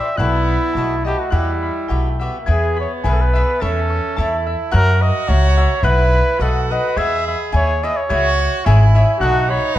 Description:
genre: mexican folk, mariachi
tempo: 106 BPM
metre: 2/4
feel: swing 54% on 8ths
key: E major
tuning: A4 = 443 Hz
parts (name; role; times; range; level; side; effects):
- warm trumpet; melody; 0.0-9.8 s; E4 to E5; -20 LUFS; right 1 dB; none
- cavaquinho; accompaniment; 0.0-9.8 s; D#4 to F#5; -26 LUFS; left 2 dB; none
- concert harp; arpeggios; 0.0-9.8 s; D5 to A6; -25 LUFS; left 3 dB; none
- bright trumpet; second line; 0.2-9.8 s; G3 to G#4; -25 LUFS; right 4 dB; none
- upright bass; bass; 0.2-9.8 s; G#1 to F#2; -16 LUFS; equal; none
room: light reverb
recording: dark, warm production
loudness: -14 LUFS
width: side -13 dB against mid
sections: 0.0-2.5 A section; 2.5-9.8 B section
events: none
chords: 0.2 B7sus4; 0.7 B7; 1.3 Emadd9; 2.5 E; 3.6 A/E; 4.7 F#7; 5.8 Bsus4; 6.4 B; 7.0 E; 8.1 C#m; 9.2 B7

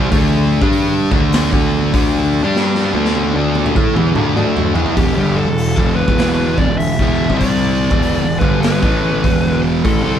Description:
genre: stoner and doom metal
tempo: 99 BPM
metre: 4/4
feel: swing 64% on 8ths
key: E minor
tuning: A4 = 439 Hz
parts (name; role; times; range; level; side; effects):
- thick fuzz guitar; riff; 0.0-10.2 s; E2 to G4; -16 LUFS; equal; distortion
- fuzz picked electric bass; bass; 0.0-10.2 s; E1 to A2; -19 LUFS; equal; overdrive
- raw garage drum kit; drums; 0.1-10.0 s; hi-hat, kick drum, snare drum, toms; -18 LUFS; equal; none
- fuzz lead guitar; melody; 5.0-10.2 s; G4 to E5; -21 LUFS; left 1 dB; distortion
room: light reverb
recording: band playing live in one room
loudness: -13 LUFS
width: side -9 dB against mid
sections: 0.0-5.0 A section; 5.0-10.2 B section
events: drum fill 2.5-5.0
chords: 0.1 D5; 5.0 Em; 7.3 C5; 7.9 Em

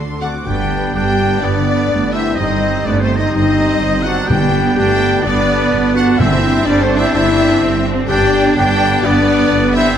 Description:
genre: cinematic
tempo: 126 BPM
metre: 4/4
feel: straight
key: G major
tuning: A4 = 439 Hz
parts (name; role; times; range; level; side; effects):
- clear symphonic violin section; melody; 0.0-10.0 s; C5 to D6; -23 LUFS; left 3 dB; none
- clear oboe; second line; 0.0-10.0 s; C5 to C6; -24 LUFS; right 1 dB; none
- mellow clarinet; second line; 0.0-10.0 s; C4 to A4; -25 LUFS; left 2 dB; none
- warm symphonic viola section; accompaniment; 0.0-10.0 s; B3 to A4; -24 LUFS; right 1 dB; none
- concert harp; arpeggios; 0.0-10.0 s; G2 to Eb5; -26 LUFS; left 11 dB; none
- rich symphonic cello section; bass; 0.0-10.0 s; D3 to D4; -21 LUFS; right 3 dB; none
- rich symphonic double bass section; bass; 0.0-9.9 s; G1 to D2; -20 LUFS; right 4 dB; none
- rich studio violin section; second line; 0.2-10.0 s; C5 to G5; -26 LUFS; left 2 dB; none
- silver concert flute; second line; 0.2-10.0 s; C5 to G5; -25 LUFS; left 2 dB; none
- mellow French horn section; sustained chords; 0.2-9.9 s; C4 to G4; -19 LUFS; left 3 dB; none
- warm trumpet; stabs; 0.2-10.0 s; G3 to D4; -22 LUFS; right 1 dB; none
- warm trombone section; sustained chords; 0.4-10.0 s; D3 to C4; -25 LUFS; right 7 dB; none
- timpani; percussion; 4.3-6.9 s; G2; -19 LUFS; equal; none
room: moderate scoring stage reverb, RT60 1.4 s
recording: none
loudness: -12 LUFS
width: side -9 dB against mid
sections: 0.5-10.0 A section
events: none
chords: 0.5 G; 2.4 Cm/G; 4.3 G; 6.2 Cadd9/G; 8.1 G

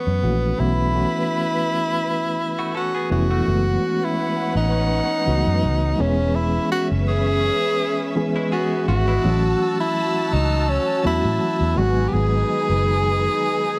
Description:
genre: soul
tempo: 83 BPM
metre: 4/4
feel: swing 54% on 16ths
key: E major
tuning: A4 = 440 Hz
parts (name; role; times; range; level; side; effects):
- breathy tenor saxophone; melody; 0.0-13.8 s; B3 to G#4; -25 LUFS; equal; none
- warm studio string section; second line; 0.0-13.8 s; C#4 to E6; -31 LUFS; equal; none
- reed electric piano; accompaniment; 0.0-13.8 s; D#3 to G#4; -28 LUFS; equal; overdrive, fast tremolo
- vintage muted fingered electric bass; bass; 0.1-13.3 s; E1 to A2; -24 LUFS; equal; none
- direct-recorded clean electric guitar; riff; 2.6-3.6, 8.4-9.4 s; G#3 to A4; -33 LUFS; equal; subtle chorus
room: light reverb, studio ambience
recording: none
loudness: -21 LUFS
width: mono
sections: 0.0-3.5 A section; 3.5-13.8 B section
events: none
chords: 0.0 A69; 0.6 B9sus4; 3.5 F#m11; 6.0 E6; 9.2 A6; 11.8 G#m7

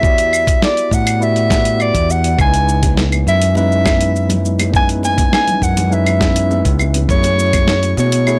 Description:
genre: sunset chillout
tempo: 102 BPM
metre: 4/4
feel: straight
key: C# minor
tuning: A4 = 439 Hz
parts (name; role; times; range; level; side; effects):
- breathy soprano saxophone; melody; 0.0-8.4 s; C#5 to G#5; -19 LUFS; equal; analog delay
- mellow tine electric piano; accompaniment; 0.0-8.4 s; G#3 to F#5; -24 LUFS; equal; analog delay
- fingered electric bass; bass; 0.0-8.4 s; C#2 to B2; -19 LUFS; equal; none
- dusty soul sampler-style drum kit; drums; 0.0-8.4 s; claves, hi-hat, shaker, snare drum; -22 LUFS; equal; none
- electronic kick drum; drums; 0.0-7.6 s; none; -19 LUFS; equal; none
- congas; percussion; 2.4-8.4 s; none; -28 LUFS; equal; none
room: little or no reverb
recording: dry, gritty hardware recording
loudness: -14 LUFS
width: mono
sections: 0.0-8.4 A section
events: none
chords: 0.0 Em9; 2.4 C#m9; 7.1 F#m9

